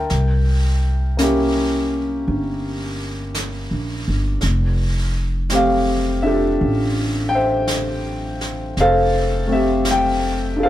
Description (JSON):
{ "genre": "jazz ballad", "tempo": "55 BPM", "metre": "4/4", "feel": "swing 66% on 8ths", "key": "F major", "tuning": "A4 = 440 Hz", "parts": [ { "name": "warm concert grand piano", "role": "accompaniment", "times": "0.0-10.7 s", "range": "A3 to Bb5", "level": "-19 LUFS", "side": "left 1 dB", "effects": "none" }, { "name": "upright bass", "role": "bass", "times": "0.0-10.7 s", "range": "F1 to C2", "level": "-21 LUFS", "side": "equal", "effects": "none" }, { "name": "jazz brush drum kit", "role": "drums", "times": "0.1-10.7 s", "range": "brushed snare drum, hi-hat, snare drum", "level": "-29 LUFS", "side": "right 2 dB", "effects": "none" } ], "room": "light reverb", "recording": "band playing live in one room", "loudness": "-17 LUFS", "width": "side -13 dB against mid", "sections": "0.0-10.7 A section", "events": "none", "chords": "0.1 C7b9; 4.4 Fmaj9", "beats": "| 0.09 1.18 2.26 3.34 | 4.42 5.50 6.58 7.68 | 8.76 9.85" }